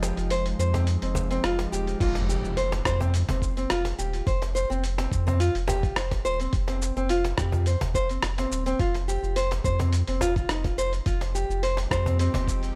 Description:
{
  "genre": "organic downtempo",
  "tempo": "106 BPM",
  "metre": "4/4",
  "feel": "swing 53% on 16ths",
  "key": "F minor",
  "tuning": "A4 = 440 Hz",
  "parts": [
    { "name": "bowed-like drone", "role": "sustained chords", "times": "0.0-2.0, 11.5-12.8 s", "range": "F3 to G4", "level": "-38 LUFS", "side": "equal", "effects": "built-in reverb, sidechain pumping" },
    { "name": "nylon-string guitar", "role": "arpeggios", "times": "0.0-12.7 s", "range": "C4 to C5", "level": "-31 LUFS", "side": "equal", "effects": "tape echo" },
    { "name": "warm sub bass", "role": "bass", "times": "0.0-12.7 s", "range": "Eb1 to F2", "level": "-29 LUFS", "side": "equal", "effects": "sidechain pumping" },
    { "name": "dusty soul sampler-style drum kit", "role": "drums", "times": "0.0-12.7 s", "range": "crash cymbal, hi-hat, rim click, shaker", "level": "-36 LUFS", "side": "equal", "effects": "overdrive" },
    { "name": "cajon", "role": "percussion", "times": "0.0-12.4 s", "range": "none", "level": "-36 LUFS", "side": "equal", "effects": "none" },
    { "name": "electronic kick drum", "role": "drums", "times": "2.0-12.6 s", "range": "none", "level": "-29 LUFS", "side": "equal", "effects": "overdrive" },
    { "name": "impact", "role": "sound effects", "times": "2.0-4.3 s", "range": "none", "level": "-37 LUFS", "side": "equal", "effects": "none" }
  ],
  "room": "little or no reverb",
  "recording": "none",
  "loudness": "-26 LUFS",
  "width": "mono",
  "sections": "0.0-2.0 A section; 2.0-12.8 B section",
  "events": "break 0.0-2.0; impact 2.0-4.3",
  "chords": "0.0 Fm9"
}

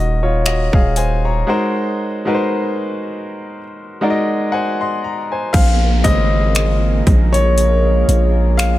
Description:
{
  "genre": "contemporary R&B",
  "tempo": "59 BPM",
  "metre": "4/4",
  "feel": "swing 54% on 16ths",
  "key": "unclear",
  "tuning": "A4 = 439 Hz",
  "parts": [
    { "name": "bright grand piano", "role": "accompaniment", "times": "0.0-8.8 s", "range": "Db3 to C6", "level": "-18 LUFS", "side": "left 1 dB", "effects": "none" },
    { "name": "long sustained 808-style bass", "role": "bass", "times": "0.0-8.8 s", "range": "Eb1 to Bb1", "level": "-15 LUFS", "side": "equal", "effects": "none" },
    { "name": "trap drum kit", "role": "drums", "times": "0.5-8.8 s", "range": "crash cymbal, finger snaps, hi-hat, kick drum", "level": "-16 LUFS", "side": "equal", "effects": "overdrive" },
    { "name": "chorused pulse-width pad", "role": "sustained chords", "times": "5.5-8.8 s", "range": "Bb3 to Bb4", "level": "-24 LUFS", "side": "right 2 dB", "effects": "none" },
    { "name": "downlifter", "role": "sound effects", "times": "5.5-8.8 s", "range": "none", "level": "-28 LUFS", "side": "right 2 dB", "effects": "none" }
  ],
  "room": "digital ambience",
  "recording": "none",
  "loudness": "-14 LUFS",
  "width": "side -15 dB against mid",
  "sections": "0.0-5.5 A section; 5.5-8.8 B section",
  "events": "break 1.5-5.5; grand piano solo 5.5-8.8",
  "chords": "0.0 Ebm9; 1.5 Ab7; 5.5 Bbm7"
}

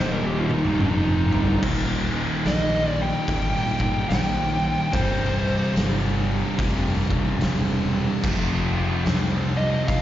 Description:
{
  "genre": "stoner and doom metal",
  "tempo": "73 BPM",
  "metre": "4/4",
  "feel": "swing 63% on 8ths",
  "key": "unclear",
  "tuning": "A4 = 440 Hz",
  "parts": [
    { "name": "fuzz lead guitar", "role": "melody", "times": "0.0-10.0 s", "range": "Eb4 to G5", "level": "-27 LUFS", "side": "right 1 dB", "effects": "distortion, slapback echo, tape echo" },
    { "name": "thick fuzz guitar", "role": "riff", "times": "0.0-10.0 s", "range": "C2 to G3", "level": "-27 LUFS", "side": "left 5 dB", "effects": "distortion, slapback echo" },
    { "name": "thick fuzz guitar", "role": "riff", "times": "0.0-10.0 s", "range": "C2 to G3", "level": "-30 LUFS", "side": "right 6 dB", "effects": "distortion" },
    { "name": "tight distorted guitar", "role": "riff", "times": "0.0-10.0 s", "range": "C2 to F4", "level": "-32 LUFS", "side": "equal", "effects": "distortion" },
    { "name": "fuzz fingered electric bass", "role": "bass", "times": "0.0-10.0 s", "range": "C1 to C2", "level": "-27 LUFS", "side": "equal", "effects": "overdrive" },
    { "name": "oversized low-tuned drum kit", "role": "drums", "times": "0.5-10.0 s", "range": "crash cymbal, hi-hat, kick drum, snare drum, toms", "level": "-26 LUFS", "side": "equal", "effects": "none" }
  ],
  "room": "small room ambience",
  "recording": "live gig heard through the venue's PA, recital hall reverb, nothing above 7.5 kHz",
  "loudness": "-20 LUFS",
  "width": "side -12 dB against mid",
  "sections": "0.0-1.6 A section; 1.6-10.0 B section",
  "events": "drum fill 0.0-1.6; lead electric guitar solo 0.0-1.6",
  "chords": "0.0 Cm; 1.6 Eb; 4.9 Cm; 8.2 Fm"
}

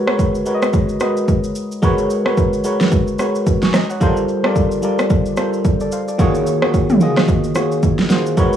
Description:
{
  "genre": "amapiano",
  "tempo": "110 BPM",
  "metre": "4/4",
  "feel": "swing 58% on 16ths",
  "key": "unclear",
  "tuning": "A4 = 440 Hz",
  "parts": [
    { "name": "FM electric piano", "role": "accompaniment", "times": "0.0-8.6 s", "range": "D#3 to C#6", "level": "-17 LUFS", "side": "equal", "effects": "chorus, cassette tape" },
    { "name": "deep house drum kit", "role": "drums", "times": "0.1-8.6 s", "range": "kick drum, rim click, shaker, snare drum, toms", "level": "-17 LUFS", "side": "right 1 dB", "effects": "overdrive" }
  ],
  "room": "light reverb, digital ambience",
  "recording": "home recording on cassette, small room ambience",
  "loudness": "-14 LUFS",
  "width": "side -9 dB against mid",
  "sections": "0.0-8.6 A section",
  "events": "none",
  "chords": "0.0 G#m11; 4.0 Gm11; 6.2 D#m11"
}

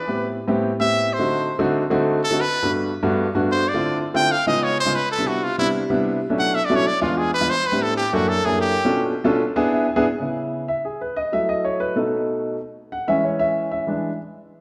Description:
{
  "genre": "jazz",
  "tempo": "188 BPM",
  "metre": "4/4",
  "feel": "straight",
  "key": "A minor, C# minor from 10.0 s",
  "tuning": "A4 = 440 Hz",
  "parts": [
    { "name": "brilliant trumpet", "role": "melody", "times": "0.0-9.1 s", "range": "E4 to G5", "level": "-24 LUFS", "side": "equal", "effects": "none" },
    { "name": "warm grand piano", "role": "accompaniment", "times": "0.1-14.2 s", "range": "E2 to G#5", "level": "-23 LUFS", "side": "equal", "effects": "none" }
  ],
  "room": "moderate scoring stage reverb, RT60 1.6 s",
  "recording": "recorded in a church or concert hall",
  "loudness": "-21 LUFS",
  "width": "mono",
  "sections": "0.0-10.0 A section; 10.0-14.6 A section",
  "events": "trumpet solo 0.0-10.0; grand piano fill 9.4-10.0; grand piano solo 10.0-14.6",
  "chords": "0.0 Am9; 1.1 D7b9; 2.4 Gmaj7; 3.7 Dm9; 4.3 C#9; 4.9 Cmaj9; 6.2 Bm11; 6.9 E7b9; 7.5 Am11; 8.1 F#7alt; 8.8 Bm7b5; 9.4 E7; 10.0 C#m7; 11.3 F#m7; 12.0 B7; 12.6 E6; 13.9 E7"
}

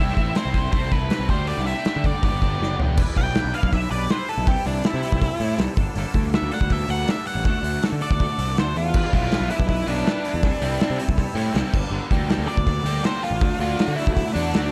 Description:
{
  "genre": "indie rock",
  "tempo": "161 BPM",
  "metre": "4/4",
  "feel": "straight",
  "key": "unclear",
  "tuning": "A4 = 440 Hz",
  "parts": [
    { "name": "octave-fuzz lead guitar", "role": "melody", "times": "0.0-14.7 s", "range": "D4 to G5", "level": "-30 LUFS", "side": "equal", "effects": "distortion, tape echo" },
    { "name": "biting overdriven guitar", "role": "riff", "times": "0.0-3.0, 9.1-14.7 s", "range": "E3 to A4", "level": "-33 LUFS", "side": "equal", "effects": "analog chorus" },
    { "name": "twangy electric guitar", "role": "riff", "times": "0.0-14.7 s", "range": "G2 to B4", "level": "-34 LUFS", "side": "equal", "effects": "ensemble chorus" },
    { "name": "fuzz picked electric bass", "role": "bass", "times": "0.0-14.7 s", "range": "E1 to D3", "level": "-28 LUFS", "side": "equal", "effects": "overdrive" },
    { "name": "loose indie drum kit", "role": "drums", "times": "0.1-14.6 s", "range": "crash cymbal, hi-hat, kick drum, snare drum, toms", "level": "-26 LUFS", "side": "equal", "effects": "none" }
  ],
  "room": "little or no reverb",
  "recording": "dark, warm production",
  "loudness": "-22 LUFS",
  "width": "mono",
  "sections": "0.0-3.0 A section; 3.0-14.7 B section",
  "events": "drum fill 2.6-3.0; lead electric guitar solo 3.0-14.7",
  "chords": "0.0 C; 0.7 Am7/C; 1.3 Dsus4; 2.2 Gmaj7; 3.0 Em7; 4.5 C6; 5.8 Gmadd9; 7.5 D; 8.9 Em7; 10.4 C6; 11.7 Gmadd9; 13.4 D"
}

